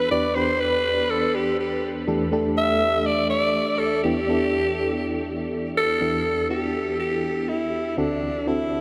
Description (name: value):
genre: pop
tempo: 122 BPM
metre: 4/4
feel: straight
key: E minor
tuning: A4 = 440 Hz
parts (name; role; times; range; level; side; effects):
- growling alto saxophone; melody; 0.0-8.8 s; D4 to E5; -25 LUFS; equal; analog delay
- FM electric piano with tremolo; accompaniment; 0.0-8.8 s; D2 to B4; -28 LUFS; equal; none
room: wet huge ambient reverb, RT60 7.7 s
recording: dreamy mix soaked in reverb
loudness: -23 LUFS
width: mono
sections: 0.0-6.0 A section; 6.0-8.8 B section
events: none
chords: 0.1 G/E; 2.1 Dsus4/E; 4.0 Em7; 8.0 D7